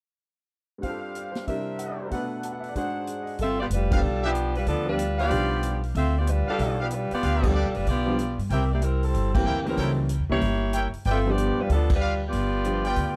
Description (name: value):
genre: jazz, big band swing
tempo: 188 BPM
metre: 4/4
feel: swing 64% on 8ths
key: G mixolydian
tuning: A4 = 439 Hz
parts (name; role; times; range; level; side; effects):
- clear baby grand piano; accompaniment; 0.8-12.8 s; G2 to A5; -33 LUFS; equal; none
- clear trumpet section; stabs; 0.8-13.2 s; D4 to Bb5; -35 LUFS; equal; tape echo
- swinging big-band drum kit; drums; 0.8-13.1 s; crash cymbal, hi-hat, kick drum, snare drum; -32 LUFS; equal; none
- clear saxophone section; melody; 3.4-13.2 s; E3 to E5; -29 LUFS; equal; none
- upright bass; bass; 3.4-13.2 s; F1 to G2; -28 LUFS; equal; none
room: small room reverb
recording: dry, close 1970s-style studio recording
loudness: -26 LUFS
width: mono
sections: 0.8-3.4 A section; 3.4-13.2 B section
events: band accent 3.9, 7.4, 9.3, 11.9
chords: 0.8 G7sus4; 1.5 C9; 2.1 Bm7; 2.8 Ab7#11; 3.4 G7; 8.5 C7; 9.8 C#dim7; 11.1 G7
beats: | 0.84 1.16 1.48 1.80 | 2.12 2.44 2.76 3.08 | 3.40 3.71 4.04 4.35 | 4.67 4.99 5.31 5.63 | 5.95 6.27 6.59 6.91 | 7.22 7.54 7.86 8.18 | 8.50 8.82 9.14 9.46 | 9.78 10.10 10.41 10.73 | 11.05 11.37 11.69 12.01 | 12.33 12.65 12.97